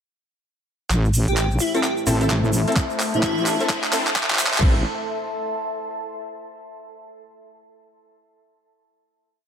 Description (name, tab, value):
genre	bass house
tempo	129 BPM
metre	4/4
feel	swing 62% on 16ths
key	A minor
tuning	A4 = 440 Hz
part	dark analog pad	sustained chords	1.5-4.8 s	A3 to C5	-32 LUFS	left 1 dB	chorus, sidechain pumping
part	wobble bass	bass	0.9-4.8 s	A1	-21 LUFS	equal	chorus, tube saturation, sidechain pumping
part	garage drum kit	drums	0.9-4.7 s	crash cymbal, handclaps, hi-hat	-24 LUFS	right 1 dB	high-pass filter on snare, studio reverb, high-pass filter on hats, high-pass filter on cymbals
part	egg shaker	percussion	0.9-4.6 s	none	-31 LUFS	right 3 dB	none
part	riser	sound effects	2.0-4.6 s	none	-31 LUFS	left 1 dB	none
part	deep dark ambient pad	texture	2.3-6.4 s	A4 to C6	-30 LUFS	equal	chorus, built-in reverb, sidechain pumping
part	airy dreamy lead	melody	1.3-3.8 s	E4 to G4	-27 LUFS	left 1 dB	chorus, dub echo
part	orchestra-hit-like synth stab	stabs	1.7-4.8 s	C4 to A4	-26 LUFS	left 1 dB	built-in reverb, cassette tape, sidechain pumping, dub echo
part	electronic kick drum	drums	2.8-4.7 s	none	-19 LUFS	equal	studio reverb
room	moderate lush hall reverb, RT60 2.1 s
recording	high-pass filter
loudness	-19 LUFS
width	side -8 dB against mid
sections	0.9-4.6 build; 4.6-6.5 final chord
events	build-up 0.9-4.6; drum fill 0.9-4.6; filter sweep 0.9-4.6; riser 2.0-4.6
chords	0.9 Am